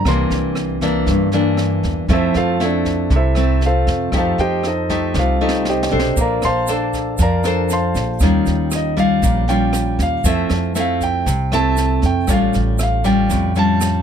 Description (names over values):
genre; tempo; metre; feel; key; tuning
bossa nova; 118 BPM; 4/4; straight; unclear; A4 = 440 Hz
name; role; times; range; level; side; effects
dark concert grand piano; melody; 0.0-14.0 s; D4 to C6; -20 LUFS; right 1 dB; none
nylon-string guitar; accompaniment; 0.0-14.0 s; G2 to C5; -18 LUFS; left 1 dB; none
upright bass; bass; 0.0-14.0 s; A1 to G2; -20 LUFS; equal; none
jazz brush drum kit; drums; 0.0-13.9 s; kick drum, rim click, snare drum; -24 LUFS; right 1 dB; none
egg shaker; percussion; 6.2-14.0 s; none; -31 LUFS; right 4 dB; none
room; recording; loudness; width
little or no reverb; close, detailed microphones; -15 LUFS; side -8 dB against mid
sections
0.0-14.0 A section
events
grand piano solo 0.0-14.0; drum fill 5.1-6.2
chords
0.0 C9; 2.1 Fmaj7; 4.1 F9; 6.2 Bbmaj9; 8.2 Eb9; 10.2 Fmaj7; 12.3 Aaug7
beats
| 0.05 0.56 1.07 1.58 | 2.09 2.60 3.11 3.62 | 4.13 4.64 5.15 5.66 | 6.17 6.68 7.19 7.70 | 8.21 8.72 9.23 9.74 | 10.25 10.76 11.27 11.78 | 12.29 12.80 13.31 13.82